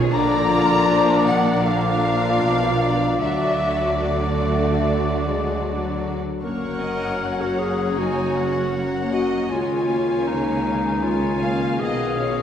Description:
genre	cinematic, emotional film score for orchestra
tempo	78 BPM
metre	4/4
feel	rubato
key	unclear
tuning	A4 = 440 Hz
part	muted symphonic violin section	second line	0.0-12.4 s	F#4 to G#5	-29 LUFS	left 2 dB	none
part	warm clarinet	second line	0.0-12.4 s	D#4 to A#4	-25 LUFS	left 1 dB	none
part	muted symphonic viola section	accompaniment	0.0-12.4 s	D3 to E#4	-28 LUFS	equal	none
part	muted studio cello section	bass	0.0-12.4 s	F#2 to D3	-30 LUFS	right 1 dB	none
part	muted symphonic double bass section	bass	0.0-12.4 s	F#1 to D2	-26 LUFS	right 2 dB	none
part	muted studio violin section	melody	0.1-12.4 s	D5 to C#6	-30 LUFS	left 4 dB	none
part	mellow hollow silver concert flute	second line	0.1-6.0 s	D5 to A#5	-26 LUFS	left 1 dB	none
part	warm oboe	second line	0.1-6.1 s	D5	-29 LUFS	right 1 dB	none
part	warm French horn section	sustained chords	0.1-12.4 s	D#3 to D4	-26 LUFS	left 3 dB	none
room	wet scoring stage reverb, RT60 2.0 s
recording	recorded in a church or concert hall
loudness	-18 LUFS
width	side -9 dB against mid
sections	0.0-6.4 A section; 6.4-12.4 A section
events	none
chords	0.1 A#; 3.2 D; 6.4 F#; 9.5 C#add9

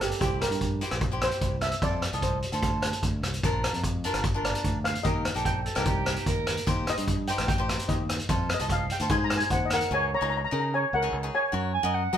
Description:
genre	calypso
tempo	148 BPM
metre	4/4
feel	straight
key	unclear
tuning	A4 = 439 Hz
part	steel pan	melody	0.0-11.7 s	G4 to Bb5	-29 LUFS	equal	none
part	modern bright fingered electric bass	bass	0.0-12.2 s	G1 to Gb3	-32 LUFS	equal	none
part	street-band drum kit	drums	0.0-9.9 s	hi-hat, kick drum, rim click	-28 LUFS	equal	none
part	cavaquinho	accompaniment	0.2-12.2 s	D4 to Eb5	-32 LUFS	left 1 dB	none
part	mellow soprano saxophone	second line	5.7-6.7, 11.7-12.2 s	G4 to Ab5	-30 LUFS	right 5 dB	none
room	light reverb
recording	band playing live in one room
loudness	-24 LUFS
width	side -9 dB against mid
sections	0.0-9.9 A section; 9.9-12.2 B section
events	steel pan solo 0.0-9.9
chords	0.2 C7; 1.8 F; 3.4 Bb; 5.1 Eb; 6.7 Cm; 8.3 F; 9.1 Ab; 9.9 Dbsus2; 11.5 Gbadd9

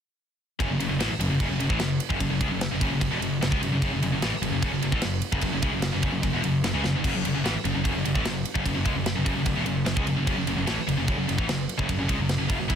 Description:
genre	heavy metal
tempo	149 BPM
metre	4/4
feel	straight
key	F# minor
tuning	A4 = 438 Hz
part	scooped high-gain guitar	riff	0.6-12.8 s	E2 to E4	-26 LUFS	left 1 dB	distortion
part	fuzz picked electric bass	bass	0.6-12.8 s	E1 to E2	-31 LUFS	equal	overdrive
part	tight metal drum kit	drums	0.6-12.8 s	crash cymbal, kick drum, ride cymbal, snare drum	-29 LUFS	equal	none
room	small room ambience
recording	dense, heavily limited modern master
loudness	-23 LUFS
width	side -8 dB against mid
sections	0.6-12.8 A section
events	drum fill 6.8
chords	0.6 F#m

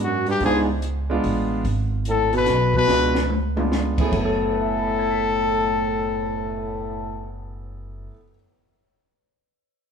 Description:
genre	jazz, small-group swing and bop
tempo	146 BPM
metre	3/4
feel	swing 66% on 8ths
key	F# minor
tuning	A4 = 440 Hz
part	clear trumpet	melody	0.0-7.4 s	F#4 to B4	-23 LUFS	left 5 dB	none
part	dark baritone saxophone	second line	0.0-7.4 s	F#2 to B2	-26 LUFS	right 4 dB	none
part	upright bass	bass	0.0-8.1 s	F#1 to G#2	-27 LUFS	right 1 dB	none
part	compact cocktail drum kit	drums	0.3-6.5 s	crash cymbal, cymbal swell, hi-hat, kick drum, snare drum, toms	-28 LUFS	left 1 dB	none
part	clear concert grand piano	accompaniment	0.4-8.3 s	F#2 to B6	-26 LUFS	right 1 dB	none
room	moderate large studio reverb, RT60 1.3 s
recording	band playing live in one room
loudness	-19 LUFS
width	side -6 dB against mid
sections	0.0-4.1 A section; 4.1-6.6 B section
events	drum fill 2.9-3.7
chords	0.4 C#7b9; 1.6 G#m; 2.9 C#7b9; 4.1 F#m11

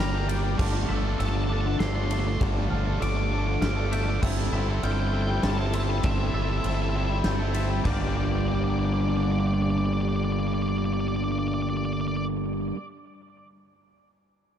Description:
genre	post-rock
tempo	99 BPM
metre	3/4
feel	straight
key	G dorian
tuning	A4 = 440 Hz
part	octave-fuzz lead guitar	melody	0.0-12.2 s	D5 to D6	-35 LUFS	left 1 dB	distortion, analog delay
part	warm studio string section	sustained chords	0.0-12.2 s	D4 to D6	-41 LUFS	equal	none
part	glockenspiel with hard plastic mallets	arpeggios	0.0-8.1 s	D6 to A6	-41 LUFS	right 6 dB	analog delay
part	twangy electric guitar	arpeggios	0.0-12.8 s	G3 to E5	-38 LUFS	left 3 dB	none
part	biting overdriven guitar	riff	0.0-12.8 s	G2 to Bb4	-32 LUFS	left 14 dB	none
part	distorted electric guitar	riff	0.0-12.8 s	G2 to A4	-31 LUFS	right 11 dB	distortion
part	growling fingered electric bass	bass	0.0-12.7 s	G1	-27 LUFS	equal	overdrive
part	huge arena drum kit	drums	0.3-8.0 s	crash cymbal, kick drum, ride cymbal, snare drum, toms	-32 LUFS	equal	none
room	small room ambience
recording	dark, warm production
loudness	-23 LUFS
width	side -9 dB against mid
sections	0.0-7.9 A section; 7.9-11.5 B section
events	none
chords	0.0 Gm; 0.6 Dmadd9/G; 4.2 Am/G; 7.9 Gm

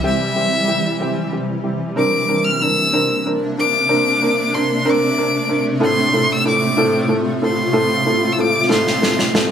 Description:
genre	six-eight pop ballad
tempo	62 BPM (dotted quarters)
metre	6/8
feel	straight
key	unclear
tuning	A4 = 440 Hz
part	warm upright piano	accompaniment	0.0-9.5 s	A2 to Bb4	-19 LUFS	equal	none
part	shimmering ambient pad	sustained chords	0.0-9.5 s	C3 to F4	-21 LUFS	equal	chorus, built-in reverb
part	clear violin	melody	0.1-9.4 s	E5 to F6	-19 LUFS	left 2 dB	none
part	snare drum	drums	8.7-9.5 s	none	-18 LUFS	right 1 dB	none
room	wet studio reverb, RT60 0.6 s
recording	band playing live in one room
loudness	-15 LUFS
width	side -8 dB against mid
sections	0.0-2.0 A section; 2.0-9.5 A section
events	break 0.0-2.0; drum fill 8.7-9.5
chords	0.0 C; 2.0 Bbadd9; 5.8 F/A

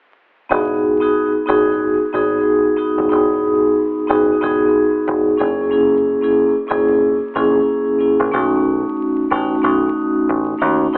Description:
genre	hip hop, boom-bap hip-hop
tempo	92 BPM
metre	4/4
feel	swing 58% on 16ths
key	E major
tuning	A4 = 441 Hz
part	vibraphone with soft mallets	accompaniment	0.5-11.0 s	A3 to G#4	-17 LUFS	equal	high-pass filter, low-pass filter, analog delay
part	deep dub picked electric bass	bass	0.5-11.0 s	D#1 to D#2	-25 LUFS	equal	none
room	moderate spring reverb, RT60 1.3 s, studio reverb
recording	echo-heavy mix, vinyl crackle, telephone sound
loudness	-16 LUFS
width	mono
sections	0.5-11.0 A section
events	none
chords	0.5 Emaj9; 5.4 F#7; 8.3 B7

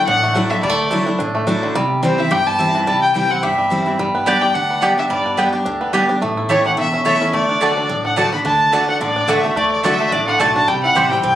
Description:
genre	bluegrass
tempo	215 BPM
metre	4/4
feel	swing 55% on 8ths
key	D mixolydian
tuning	A4 = 440 Hz
part	dark fiddle	melody	0.0-11.4 s	C5 to B5	-17 LUFS	left 1 dB	none
part	picked steel-string acoustic guitar	accompaniment	0.0-11.4 s	E2 to G4	-21 LUFS	left 1 dB	none
part	bluegrass banjo	arpeggios	0.0-11.4 s	D3 to G4	-20 LUFS	right 1 dB	none
part	upright bass	bass	0.1-11.4 s	E1 to D2	-29 LUFS	equal	none
part	mandolin	stabs	4.3-11.1 s	A3 to A5	-18 LUFS	right 2 dB	none
room	moderate studio reverb, RT60 0.5 s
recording	recorded on a phone in the room, club reverb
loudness	-14 LUFS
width	side -12 dB against mid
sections	0.0-8.5 A section; 8.5-11.4 B section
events	none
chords	0.0 Dadd9; 1.8 C; 4.0 G; 6.2 A; 7.3 D; 10.7 C

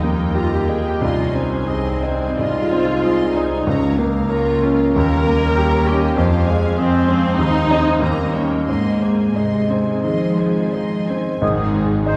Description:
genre	classical, romantic movement for piano and orchestra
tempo	81-102 BPM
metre	4/4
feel	rubato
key	Ab major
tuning	A4 = 440 Hz
part	clear concert grand piano	melody	0.0-12.2 s	C2 to Bb4	-21 LUFS	equal	none
part	rich symphonic violin section	melody	0.0-12.2 s	C5 to C6	-38 LUFS	equal	none
part	dark symphonic violin section	second line	0.0-12.2 s	Eb4 to G5	-33 LUFS	equal	none
part	rich studio viola section	accompaniment	0.0-12.2 s	Eb3 to Bb4	-24 LUFS	equal	none
part	mellow French horn section	sustained chords	0.0-12.2 s	G3 to Eb4	-30 LUFS	equal	none
part	clear studio cello section	bass	0.0-12.2 s	C2 to F3	-26 LUFS	equal	none
part	clear clarinet	second line	11.4-11.7 s	Ab4	-34 LUFS	equal	none
part	mellow hollow concert flute	second line	11.4-11.7 s	Eb6	-31 LUFS	equal	none
part	mellow bassoon	accompaniment	11.4-11.6 s	Eb3	-31 LUFS	equal	none
part	rich studio double bass section	bass	11.4-12.2 s	Ab1	-27 LUFS	equal	none
part	timpani	percussion	11.4-12.2 s	Ab2	-29 LUFS	equal	none
part	clear oboe	second line	12.1-12.2 s	C5	-27 LUFS	equal	none
room	wet concert hall reverb, RT60 2.4 s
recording	heard from further back in the room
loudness	-18 LUFS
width	mono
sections	0.0-11.4 A section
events	none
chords	0.0 Eb; 1.0 Ab/C; 3.7 Bbm/Db; 5.0 Eb7; 6.2 Fm; 7.4 Ab/Eb; 8.0 Eb7; 8.7 Ab

